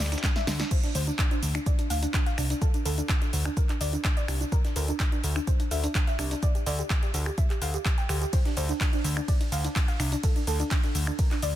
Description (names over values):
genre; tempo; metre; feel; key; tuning
progressive house; 126 BPM; 4/4; straight; unclear; A4 = 441 Hz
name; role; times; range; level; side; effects
soft round pluck; arpeggios; 0.0-11.5 s; D4 to G5; -33 LUFS; equal; lush chorus, sidechain pumping, ping-pong delay
fat analog bass; bass; 0.0-11.6 s; C2 to D2; -28 LUFS; equal; sidechain pumping
big-room dance drum kit; drums; 0.0-11.5 s; crash cymbal, finger snaps, handclaps, hi-hat, ride cymbal, shaker, snare drum; -33 LUFS; equal; none
dusty soul sampler-style drum kit; drums; 0.0-11.5 s; hi-hat, shaker, snare drum; -42 LUFS; right 1 dB; none
electronic kick drum; drums; 0.2-11.3 s; none; -25 LUFS; equal; none
room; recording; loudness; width
little or no reverb; dense, heavily limited modern master; -24 LUFS; side -13 dB against mid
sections
0.0-11.6 A section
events
drum fill 0.0-0.7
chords
0.0 N.C.; 0.7 Csus2; 4.5 G5; 8.3 Csus2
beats
0.24 | 0.71 1.19 1.66 2.14 | 2.62 3.09 3.57 4.04 | 4.52 5.00 5.47 5.95 | 6.43 6.90 7.38 7.86 | 8.33 8.81 9.28 9.76 | 10.24 10.71 11.19